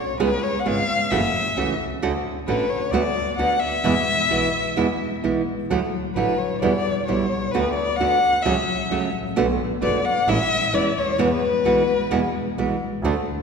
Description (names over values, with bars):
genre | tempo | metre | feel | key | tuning
tango | 131 BPM | 4/4 | rubato | unclear | A4 = 436 Hz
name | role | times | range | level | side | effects
warm violin | second line | 0.0-12.6 s | B4 to F#5 | -22 LUFS | left 4 dB | none
clear double bass | bass | 0.0-13.2 s | E1 to E2 | -29 LUFS | right 1 dB | none
nylon-string guitar | accompaniment | 0.2-13.1 s | B2 to G#4 | -22 LUFS | right 3 dB | none
room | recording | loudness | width
wet concert hall reverb, RT60 1.9 s | recorded in a church or concert hall | -19 LUFS | side -6 dB against mid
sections
0.0-13.4 A section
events
violin solo 0.0-13.4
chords
0.2 C#7; 1.1 F#m7; 2.0 Dmaj7; 2.9 Bm7/D; 3.8 E; 5.7 Dadd9; 6.6 Em7; 7.5 Bm7/D; 8.5 F#m/C#; 9.4 Bm7; 10.3 Amaj7; 11.2 Eadd9